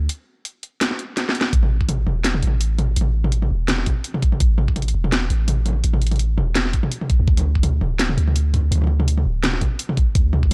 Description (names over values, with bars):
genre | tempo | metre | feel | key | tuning
half-time drum and bass | 167 BPM | 4/4 | swing 55% on 16ths, half-time | unclear | A4 = 439 Hz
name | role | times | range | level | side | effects
long sustained 808-style bass | bass | 0.0-10.5 s | D1 to D2 | -22 LUFS | equal | none
drum and bass drum kit | drums | 0.1-10.5 s | hi-hat, snare drum, toms | -25 LUFS | equal | none
electronic kick drum | drums | 1.5-10.5 s | none | -21 LUFS | equal | none
room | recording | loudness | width
little or no reverb | dry, gritty hardware recording, transformer saturation | -20 LUFS | mono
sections
0.0-10.5 A section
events
break 0.1-1.5; drum fill 1.2-1.5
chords
none